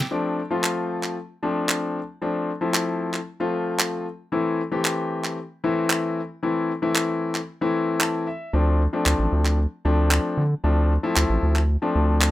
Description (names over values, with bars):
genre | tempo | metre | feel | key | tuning
dance-pop | 114 BPM | 4/4 | straight | D minor | A4 = 440 Hz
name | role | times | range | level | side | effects
warm concert grand piano | accompaniment | 0.1-12.3 s | E3 to A5 | -24 LUFS | left 2 dB | none
electronic handclaps | drums | 0.6-12.3 s | none | -22 LUFS | right 1 dB | none
round analog bass | bass | 8.5-12.3 s | A1 to D3 | -20 LUFS | equal | none
room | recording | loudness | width
light reverb | rough home demo mix | -21 LUFS | side -15 dB against mid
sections
0.1-12.3 A section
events
grand piano fill 7.7-8.5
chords
0.1 Dm7; 4.3 Am; 8.5 Dm7